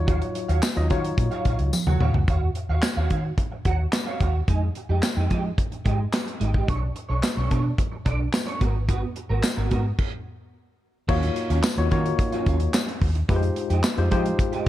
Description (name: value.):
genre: early-eighties boogie funk.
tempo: 109 BPM.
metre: 4/4.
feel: straight.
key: Eb minor.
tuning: A4 = 441 Hz.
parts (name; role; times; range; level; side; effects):
tine electric piano; accompaniment; 0.0-1.7, 11.1-14.7 s; Gb3 to Eb5; -27 LUFS; left 4 dB; medium stereo tremolo.
vintage muted fingered electric bass; bass; 0.0-14.7 s; Ab1 to F3; -24 LUFS; equal; none.
electric guitar at the edge of break-up; riff; 0.1-14.7 s; Gb3 to Gb5; -31 LUFS; right 5 dB; ensemble chorus.
modern studio drum kit; drums; 0.1-14.7 s; crash cymbal, handclaps, hi-hat, kick drum, snare drum, toms; -25 LUFS; equal; gated reverb.
tambourine; percussion; 0.6-14.0 s; none; -34 LUFS; left 6 dB; none.
room: little or no reverb.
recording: none.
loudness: -21 LUFS.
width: side -14 dB against mid.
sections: 0.0-2.3 A section; 2.3-11.1 B section; 11.1-14.7 A section.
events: drum fill 1.7-2.3; stop 10.0-11.1.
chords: 0.0 Ebm9; 4.5 Fm9; 6.7 Bm9; 8.6 Abm9; 11.1 Ebm9; 13.3 Fm9.